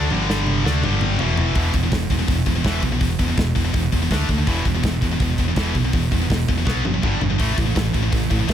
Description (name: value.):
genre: heavy metal.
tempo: 165 BPM.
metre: 4/4.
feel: straight.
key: E minor.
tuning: A4 = 440 Hz.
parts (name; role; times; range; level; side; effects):
heavy high-gain guitar; riff; 0.0-8.5 s; E2 to D4; -24 LUFS; left 13 dB; distortion.
scooped high-gain guitar; riff; 0.0-8.5 s; E2 to D4; -24 LUFS; right 9 dB; distortion.
overdriven fingered electric bass; bass; 0.0-8.5 s; E1 to D2; -23 LUFS; equal; none.
modern studio drum kit; drums; 0.1-8.5 s; hi-hat, kick drum, snare drum, toms; -22 LUFS; equal; none.
room: small room ambience.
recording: none.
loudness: -18 LUFS.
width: side -10 dB against mid.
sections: 0.0-1.6 A section; 1.6-8.5 B section.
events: drum fill 0.1-1.6, 6.7-7.4.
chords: 0.1 G5; 0.7 D5; 0.8 G5; 1.2 E5; 4.1 D5; 4.5 E5; 6.7 B5; 7.0 G5; 7.4 A5.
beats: | 0.11 0.47 0.83 1.20 | 1.56 1.92 2.29 2.65 | 3.02 3.38 3.74 4.11 | 4.47 4.84 5.20 5.57 | 5.93 6.30 6.66 7.03 | 7.39 7.76 8.12 8.49.